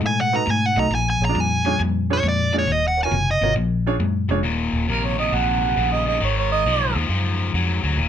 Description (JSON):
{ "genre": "blues", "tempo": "136 BPM", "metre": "4/4", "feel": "swing 67% on 8ths", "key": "Eb minor", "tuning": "A4 = 440 Hz", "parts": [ { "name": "cranked stack guitar", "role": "riff", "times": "0.0-8.1 s", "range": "Eb2 to A3", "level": "-24 LUFS", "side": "left 6 dB", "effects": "overdrive" }, { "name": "vintage muted fingered electric bass", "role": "bass", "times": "0.0-8.1 s", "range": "Eb1 to A2", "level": "-23 LUFS", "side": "equal", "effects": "none" }, { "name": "dark smooth lead guitar", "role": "melody", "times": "0.1-3.5 s", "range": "C#5 to Bb5", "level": "-21 LUFS", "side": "right 1 dB", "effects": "overdrive" }, { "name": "bright upright piano", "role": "accompaniment", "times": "0.3-4.4 s", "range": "D4 to D#5", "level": "-26 LUFS", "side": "right 5 dB", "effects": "none" }, { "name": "mellow harmonica", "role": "second line", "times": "4.9-6.9 s", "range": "Bb4 to Gb5", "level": "-22 LUFS", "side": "right 7 dB", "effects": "overdrive" } ], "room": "light reverb", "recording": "none", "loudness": "-18 LUFS", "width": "side -9 dB against mid", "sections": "0.0-4.4 A section; 4.4-8.1 B section", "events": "harmonica solo 4.4-8.1", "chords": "0.0 B7; 0.9 Bb7; 2.7 Ebm9; 3.6 Bb7#9; 4.4 Ebm7; 6.2 Abm7" }